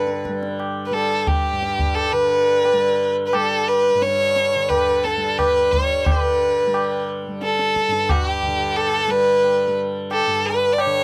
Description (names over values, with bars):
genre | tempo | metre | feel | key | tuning
indian classical, Hindustani | 88 BPM | 5/4 | straight | G raga yaman | A4 = 440 Hz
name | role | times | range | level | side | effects
clear violin | melody | 0.0-11.0 s | G4 to D5 | -20 LUFS | equal | none
tanpura | drone | 0.0-11.0 s | G2 to G3 | -30 LUFS | equal | none
tabla | percussion | 0.1-11.0 s | none | -27 LUFS | equal | none
room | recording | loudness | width
little or no reverb | dry, close 1970s-style studio recording | -20 LUFS | mono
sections
0.0-6.1 A section; 6.1-11.0 B section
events
speeding up 0.0-11.0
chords
none